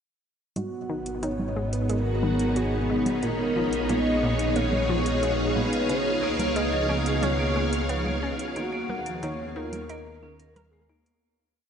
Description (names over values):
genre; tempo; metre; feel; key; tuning
ambient, sequencer-driven space music; 90 BPM; 4/4; straight; unclear; A4 = 440 Hz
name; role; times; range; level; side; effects
pulse-width lead; melody; 0.6-10.9 s; Gb4 to Eb5; -31 LUFS; equal; chorus, tape echo
string machine, full ensemble; sustained chords; 0.6-11.2 s; Cb4 to F5; -26 LUFS; equal; ensemble chorus
analog pluck; riff; 0.6-11.0 s; Ab2 to Bb4; -34 LUFS; equal; chorus, tape echo
analog drone; bass; 1.0-11.2 s; Ab1 to Eb2; -31 LUFS; equal; chorus
electronic hi-hat and congas; percussion; 0.6-11.2 s; none; -37 LUFS; right 1 dB; tape echo
twinkling granular texture; texture; 2.9-11.2 s; Gb4 to F5; -45 LUFS; left 1 dB; none
vibraphone with medium hard mallets; arpeggios; 6.1-11.2 s; F3 to Bb4; -34 LUFS; right 2 dB; auto-pan, tape echo
room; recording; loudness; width
wet lush hall reverb, RT60 2.7 s; dreamy mix soaked in reverb, nothing above 10.8 kHz; -23 LUFS; side -8 dB against mid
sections
0.6-11.2 A section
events
fade-out 7.7-11.2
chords
0.6 Abm7; 3.2 Bbm7; 5.9 Dbsus2; 8.6 Ebm7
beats
| 0.56 1.23 1.89 2.56 | 3.23 3.89 4.56 5.23 | 5.89 6.56 7.23 7.89 | 8.56 9.23 9.89 10.56